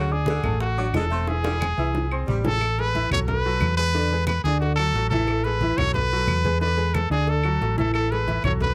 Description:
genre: latin, salsa.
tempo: 180 BPM.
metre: 4/4.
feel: straight.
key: unclear.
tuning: A4 = 444 Hz.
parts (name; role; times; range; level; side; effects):
bright trumpet; melody; 0.0-8.7 s; F#4 to C#5; -28 LUFS; equal; none.
warm saxophone section; second line; 0.0-2.4 s; C#3 to A3; -34 LUFS; equal; none.
bright upright piano; accompaniment; 0.0-8.7 s; D3 to E6; -31 LUFS; equal; none.
hollow-body short-scale fingered electric bass; bass; 0.0-8.7 s; E1 to E2; -27 LUFS; equal; none.
congas; percussion; 0.1-8.7 s; none; -33 LUFS; equal; none.
bongos and cowbell; percussion; 0.3-8.7 s; none; -35 LUFS; equal; none.
claves; percussion; 0.4-8.6 s; none; -36 LUFS; equal; none.
room: little or no reverb.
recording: close, detailed microphones.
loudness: -23 LUFS.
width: mono.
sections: 0.0-2.6 A section; 2.6-8.7 B section.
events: drum fill 1.3-2.6.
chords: 0.0 Dadd9; 1.3 Eaug; 2.6 A5; 3.3 B5; 3.9 E7; 4.6 D; 5.3 A5; 5.9 B5; 6.6 E7; 7.3 D; 7.9 A5.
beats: 0.28 0.61 0.95 | 1.28 1.61 1.95 2.28 | 2.62 2.95 3.28 3.62 | 3.95 4.28 4.61 4.95 | 5.28 5.61 5.95 6.28 | 6.61 6.95 7.28 7.61 | 7.95 8.28 8.61.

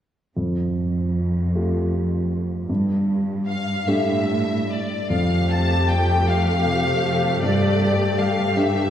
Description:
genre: cinematic.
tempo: 52 BPM (dotted quarters).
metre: 6/8.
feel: rubato.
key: F major.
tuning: A4 = 443 Hz.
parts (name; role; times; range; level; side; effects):
warm grand piano; accompaniment; 0.4-8.9 s; F2 to G4; -23 LUFS; equal; none.
warm symphonic cello section; bass; 0.4-8.9 s; F2 to A2; -24 LUFS; right 1 dB; none.
rich symphonic violin section; melody; 3.5-8.9 s; D5 to A5; -24 LUFS; left 3 dB; none.
warm chamber viola section; accompaniment; 5.1-8.9 s; A3 to G4; -26 LUFS; right 2 dB; none.
concert harp; arpeggios; 5.1-8.9 s; F2 to G4; -26 LUFS; left 4 dB; none.
room: wet concert hall reverb, RT60 2.1 s.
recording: heard from further back in the room.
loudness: -19 LUFS.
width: side -10 dB against mid.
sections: 0.4-5.1 A section; 5.1-8.9 B section.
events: none.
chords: 0.4 Fadd9; 2.7 Gsus2; 5.1 Fadd9; 7.4 Gsus2.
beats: | 0.36 1.54 | 2.69 3.87 | 5.10 6.27 | 7.43 8.57.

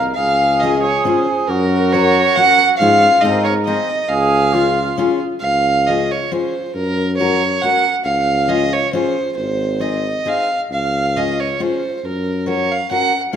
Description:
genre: alpine folk, alpine dance band.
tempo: 137 BPM.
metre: 3/4.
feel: swing 53% on 8ths, rubato.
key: Db major.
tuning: A4 = 440 Hz.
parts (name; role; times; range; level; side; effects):
dark fiddle; melody; 0.0-13.4 s; Bb4 to Gb5; -16 LUFS; right 2 dB; none.
dark trumpet; second line; 0.0-5.2 s; F4 to Bb4; -20 LUFS; right 5 dB; none.
warm tuba; bass; 0.0-13.4 s; Ab1 to Ab2; -21 LUFS; left 2 dB; none.
fingerpicked steel-string acoustic guitar; accompaniment; 0.6-13.4 s; C4 to Bb4; -22 LUFS; left 5 dB; none.
room: moderate concert hall reverb, RT60 1.8 s.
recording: minimal, uncompressed stereo recording.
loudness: -14 LUFS.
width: side -8 dB against mid.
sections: 0.0-5.4 A section; 5.4-13.4 A section.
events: none.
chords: 0.2 Db; 1.5 Gb; 2.8 Db/Ab; 3.2 Ab; 4.1 Db; 6.8 Gb; 8.1 Db; 9.4 Ab; 10.7 Db; 12.0 Gb.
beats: | 0.18 0.62 1.06 | 1.49 1.93 2.37 | 2.81 3.23 3.67 | 4.10 4.53 4.97 | 5.42 5.87 6.31 | 6.75 7.19 7.62 | 8.06 8.49 8.93 | 9.36 9.80 10.25 | 10.71 11.15 11.60 | 12.04 12.47 12.90 | 13.33.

